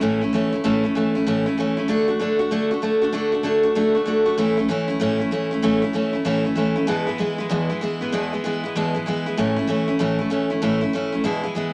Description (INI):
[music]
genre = rock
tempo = 192 BPM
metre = 4/4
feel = swing 64% on 8ths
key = A major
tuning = A4 = 440 Hz
[part]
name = picked steel-string acoustic guitar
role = solo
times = 0.0-11.7 s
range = E2 to F#4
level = -22 LUFS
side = equal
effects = none
[sound]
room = moderate studio reverb, RT60 0.8 s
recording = none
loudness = -22 LUFS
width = mono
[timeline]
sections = 0.0-11.7 A section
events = none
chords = 0.0 A; 1.9 D; 4.4 A; 6.9 E; 9.4 A